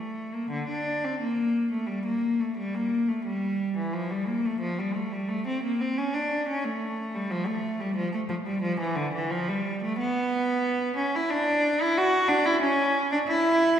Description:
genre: classical, baroque-style suite movement for unaccompanied cello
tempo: 89 BPM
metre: 4/4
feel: rubato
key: D minor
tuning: A4 = 442 Hz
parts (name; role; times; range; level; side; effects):
- rich cello; solo; 0.0-13.8 s; D3 to F#4; -24 LUFS; equal; none
room: wet scoring stage reverb, RT60 1.8 s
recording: recorded in a church or concert hall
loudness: -25 LUFS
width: side -9 dB against mid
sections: 0.0-13.8 A section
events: none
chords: none

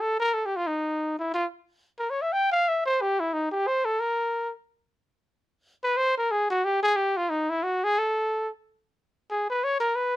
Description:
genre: jazz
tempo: 181 BPM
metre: 4/4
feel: swing 61% on 8ths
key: unclear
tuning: A4 = 440 Hz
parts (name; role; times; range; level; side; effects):
- mellow trumpet; solo; 0.0-10.2 s; Eb4 to G5; -24 LUFS; equal; none
room: little or no reverb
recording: close, detailed microphones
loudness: -24 LUFS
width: side -15 dB against mid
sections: 0.0-8.6 A section; 8.6-10.2 A section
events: trumpet solo 0.0-10.2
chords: none

